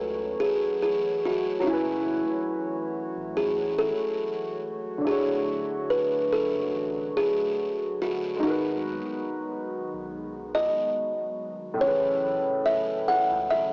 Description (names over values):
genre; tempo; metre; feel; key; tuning
lo-fi hip hop; 71 BPM; 4/4; swing 56% on 16ths; F# minor; A4 = 438 Hz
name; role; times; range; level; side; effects
buzzing kalimba; melody; 0.0-13.7 s; D#4 to F#5; -25 LUFS; equal; low-pass filter
dark upright piano; accompaniment; 0.0-13.7 s; A2 to G#5; -32 LUFS; equal; cassette tape, low-pass filter
hollow soft pad; sustained chords; 0.0-13.7 s; C#3 to C#5; -38 LUFS; equal; chorus, low-pass filter
saturated sub bass; bass; 0.0-13.7 s; D1 to C#2; -44 LUFS; equal; tube saturation
room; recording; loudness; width
small room reverb; dry, gritty hardware recording, cassette tape, small speaker sound; -24 LUFS; side -33 dB against mid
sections
0.0-13.7 A section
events
none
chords
0.0 F#m9; 5.0 Dmaj7; 8.4 G#m9; 11.8 Amaj7